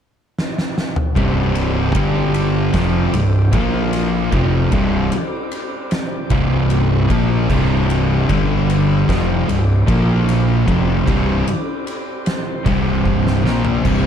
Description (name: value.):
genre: stoner and doom metal.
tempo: 76 BPM.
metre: 4/4.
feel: straight.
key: unclear.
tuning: A4 = 441 Hz.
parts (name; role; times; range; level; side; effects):
oversized low-tuned drum kit; drums; 0.4-14.0 s; crash cymbal, kick drum, ride cymbal, snare drum, toms; -22 LUFS; equal; none.
tonewheel organ; sustained chords; 1.2-14.1 s; G3 to D5; -30 LUFS; equal; none.
crunchy overdriven guitar; riff; 1.2-14.1 s; C2 to Bb3; -24 LUFS; equal; none.
thick fuzz guitar; riff; 1.2-14.1 s; C2 to Bb3; -19 LUFS; left 7 dB; distortion.
thick fuzz guitar; riff; 1.2-14.1 s; C2 to Bb3; -20 LUFS; right 7 dB; distortion.
fuzz fingered electric bass; bass; 1.2-14.1 s; C1 to Bb1; -22 LUFS; equal; overdrive, tube saturation.
room: light reverb.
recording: dark, warm production.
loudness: -15 LUFS.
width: side -8 dB against mid.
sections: 0.0-1.2 A section; 1.2-14.1 B section.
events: drum fill 0.4-1.2, 13.1-13.8.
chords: 0.0 N.C.; 1.2 C5; 1.9 G5; 2.7 C5; 3.5 Bb5; 4.3 C5; 8.3 G5; 9.1 C5; 9.9 Bb5; 10.7 C5.